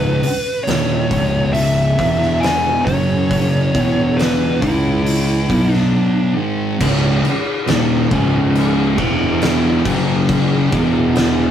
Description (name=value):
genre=stoner and doom metal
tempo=69 BPM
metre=4/4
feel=straight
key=C# minor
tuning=A4 = 441 Hz
part: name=fuzz lead guitar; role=melody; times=0.0-6.3 s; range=E4 to G#5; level=-20 LUFS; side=equal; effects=distortion
part: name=thick fuzz guitar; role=riff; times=0.0-11.5 s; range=C#2 to C#4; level=-20 LUFS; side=left 2 dB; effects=distortion
part: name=thick fuzz guitar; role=riff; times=0.0-11.5 s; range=C#2 to C#4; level=-19 LUFS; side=right 2 dB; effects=distortion
part: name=fuzz fingered electric bass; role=bass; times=0.0-11.5 s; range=C#1 to C#2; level=-24 LUFS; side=equal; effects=overdrive
part: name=oversized low-tuned drum kit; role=drums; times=0.2-11.4 s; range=crash cymbal, hi-hat, kick drum, snare drum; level=-21 LUFS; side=equal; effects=none
part: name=overdriven electric guitar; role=riff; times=6.8-11.5 s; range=C#2 to F#3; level=-20 LUFS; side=equal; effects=none
room=moderate small room reverb, RT60 0.6 s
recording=rough rehearsal-room recording, warm saturation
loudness=-14 LUFS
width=side -9 dB against mid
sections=0.0-6.8 A section; 6.8-11.5 B section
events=none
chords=0.0 C#5; 2.0 E5; 2.9 F#5; 3.7 E5; 4.6 C#m; 5.5 B5; 6.4 G#5; 6.8 C#5; 9.0 E5; 9.9 F#5; 10.7 E5